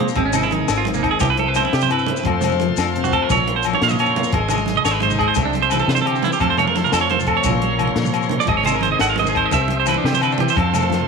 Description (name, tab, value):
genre	highlife guitar band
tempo	116 BPM (dotted quarters)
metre	12/8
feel	straight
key	Bb minor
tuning	A4 = 445 Hz
part	fingerpicked steel-string acoustic guitar	accompaniment	0.0-11.1 s	F2 to A4	-24 LUFS	left 10 dB	none
part	overdriven tonewheel organ	sustained chords	0.0-11.1 s	C5 to C6	-28 LUFS	equal	slow rotary speaker
part	clean electric guitar	arpeggios	0.0-11.1 s	Bb3 to Gb5	-20 LUFS	right 11 dB	tape echo
part	fingered electric bass	bass	0.0-11.0 s	Ab1 to C3	-24 LUFS	equal	none
part	maracas	percussion	0.1-11.0 s	none	-34 LUFS	left 15 dB	none
part	compact cocktail drum kit	drums	0.2-11.0 s	hi-hat, kick drum, snare drum	-27 LUFS	left 4 dB	none
part	agogo bells	percussion	0.2-10.9 s	none	-25 LUFS	left 12 dB	none
part	congas	percussion	0.2-11.1 s	none	-25 LUFS	right 11 dB	none
room	moderate echo chamber reverb, RT60 1.7 s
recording	1960s-style stereo with parts hard left and right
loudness	-16 LUFS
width	side -4 dB against mid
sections	0.0-11.1 A section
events	clean electric guitar solo 0.0-11.1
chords	0.2 Ab; 1.2 C; 2.3 F; 3.3 Bbmadd9; 4.3 Ab; 5.4 C; 6.4 F; 7.4 Bbmadd9; 8.5 Ab; 9.5 C; 10.6 F